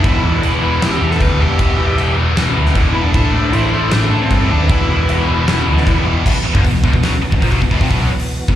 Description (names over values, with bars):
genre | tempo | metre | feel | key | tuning
hard rock | 155 BPM | 4/4 | straight | unclear | A4 = 440 Hz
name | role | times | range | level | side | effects
dark smooth lead guitar | melody | 0.0-6.0 s | C4 to B4 | -22 LUFS | left 1 dB | overdrive, plate reverb, slapback echo, tape echo
octave-fuzz lead guitar | second line | 0.0-6.1 s | A4 to G5 | -26 LUFS | right 4 dB | distortion, plate reverb, slapback echo
overdriven electric guitar | riff | 0.0-8.6 s | E2 to B3 | -22 LUFS | left 11 dB | phaser, slapback echo
scooped high-gain guitar | riff | 0.0-8.6 s | E2 to B3 | -24 LUFS | right 12 dB | distortion, slapback echo
scooped high-gain guitar | riff | 0.0-8.6 s | E2 to B3 | -23 LUFS | equal | distortion, slapback echo
hollow-body short-scale picked electric bass | bass | 0.0-8.6 s | E1 to A2 | -16 LUFS | equal | none
huge arena drum kit | drums | 0.0-8.6 s | crash cymbal, hi-hat, kick drum, snare drum | -18 LUFS | equal | none
tonewheel organ | sustained chords | 0.1-8.6 s | E3 to F#5 | -28 LUFS | right 1 dB | slow rotary speaker, chorus vibrato, plate reverb
room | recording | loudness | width
little or no reverb | live gig heard through the venue's PA, recital hall reverb | -12 LUFS | side -11 dB against mid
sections
0.0-6.2 A section; 6.2-8.6 B section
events
none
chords
0.0 Em; 3.1 Am; 4.7 E5; 6.2 Em